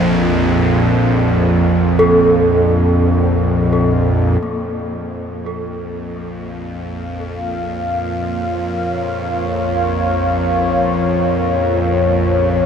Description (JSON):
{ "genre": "dark ambient drone", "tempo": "free time", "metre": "none", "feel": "none", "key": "Bb harmonic minor", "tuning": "A4 = 439 Hz", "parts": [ { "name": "gamelan-type bronze metallophone", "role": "arpeggios", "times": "0.0-11.4 s", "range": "C3 to A4", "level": "-20 LUFS", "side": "equal", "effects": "ping-pong delay" }, { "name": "bowed-like drone", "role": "drone", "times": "0.0-12.7 s", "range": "Bb1 to F2", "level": "-16 LUFS", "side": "equal", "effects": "built-in reverb" }, { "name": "deep dark ambient pad", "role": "sustained chords", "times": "6.7-12.7 s", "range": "Bb3 to F5", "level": "-18 LUFS", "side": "left 1 dB", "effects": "chorus, built-in reverb" } ], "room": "wet huge ambient reverb, RT60 7.9 s", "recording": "none", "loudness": "-14 LUFS", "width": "side -7 dB against mid", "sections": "0.0-4.4 A section; 4.4-12.7 B section", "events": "fade-in on synth drone 4.4-12.7; fade-in on ambient pad 4.4-12.7; fade-in on bronze metallophone 4.4-12.7", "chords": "0.0 Fadd11/Bb; 4.4 Bbm", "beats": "free time" }